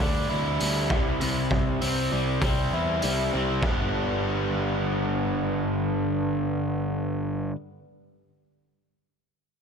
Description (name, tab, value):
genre	indie rock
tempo	99 BPM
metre	4/4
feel	straight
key	G major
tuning	A4 = 440 Hz
part	biting overdriven guitar	riff	0.0-7.6 s	G2 to E4	-26 LUFS	equal	slapback echo
part	fuzz picked electric bass	bass	0.0-7.5 s	G1 to E2	-30 LUFS	equal	overdrive
part	raw garage drum kit	drums	0.6-3.8 s	hi-hat, kick drum	-28 LUFS	equal	none
room	moderate lush hall reverb, RT60 1.8 s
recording	big arena sound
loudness	-24 LUFS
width	side -6 dB against mid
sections	0.0-3.6 A section; 3.6-6.1 B section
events	none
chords	0.0 G5/D; 0.9 C; 3.6 G